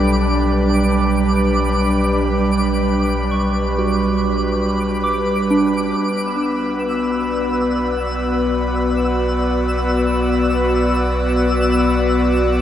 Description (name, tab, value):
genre	ambient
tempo	free time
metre	none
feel	none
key	B minor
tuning	A4 = 439 Hz
part	airy breathy pad	sustained chords	0.0-12.6 s	G3 to D5	-17 LUFS	equal	chorus
part	soft synth bell	arpeggios	0.0-7.8 s	D4 to D6	-24 LUFS	equal	chorus, phaser, tape echo
part	warm sub bass	bass	0.0-12.6 s	B1	-22 LUFS	equal	none
part	twinkling granular texture	texture	0.0-12.6 s	D6 to E6	-26 LUFS	right 1 dB	built-in reverb
room	wet cathedral reverb, RT60 5.7 s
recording	in a vast, echoing space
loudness	-15 LUFS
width	side -10 dB against mid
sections	0.0-6.0 A section; 6.0-12.6 B section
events	none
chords	0.0 G/B; 6.0 Bm